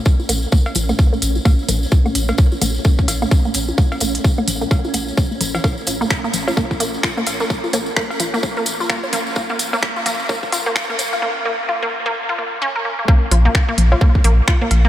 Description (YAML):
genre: minimal techno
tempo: 129 BPM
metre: 4/4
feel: swing 60% on 16ths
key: Bb minor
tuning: A4 = 438 Hz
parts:
  - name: swarming drone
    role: texture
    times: 0.0-11.2 s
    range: Db4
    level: -29 LUFS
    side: right 1 dB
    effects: built-in reverb, ensemble chorus, sidechain pumping
  - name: electronic kick drum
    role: drums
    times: 0.1-14.6 s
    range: none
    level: -15 LUFS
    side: equal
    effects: none
  - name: tambourine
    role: percussion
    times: 0.1-11.2 s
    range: none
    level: -27 LUFS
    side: left 2 dB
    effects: none
  - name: resonant blip pluck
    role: riff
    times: 0.2-14.9 s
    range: F3 to Bb4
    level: -22 LUFS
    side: equal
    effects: chorus, sidechain pumping, tape echo
  - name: rubbery square bass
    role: bass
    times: 0.3-14.9 s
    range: Bb1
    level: -18 LUFS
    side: equal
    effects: sidechain pumping
  - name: minimal click drum kit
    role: drums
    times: 0.3-14.8 s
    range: finger snaps, hi-hat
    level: -23 LUFS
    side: equal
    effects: none
  - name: woodblock, cowbell, congas and bongos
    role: percussion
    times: 0.3-14.8 s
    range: none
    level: -28 LUFS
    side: left 2 dB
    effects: tape echo
room: moderate huge ambient reverb, RT60 4.0 s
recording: dreamy mix soaked in reverb, high-pass filter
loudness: -15 LUFS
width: side -12 dB against mid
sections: 0.0-13.1 A section; 13.1-14.9 B section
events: build-up 0.0-13.1; filter sweep on synth pluck 0.0-13.1; filter sweep 0.0-13.1; drop 13.1-14.9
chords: 0.0 Bbm; 13.1 N.C.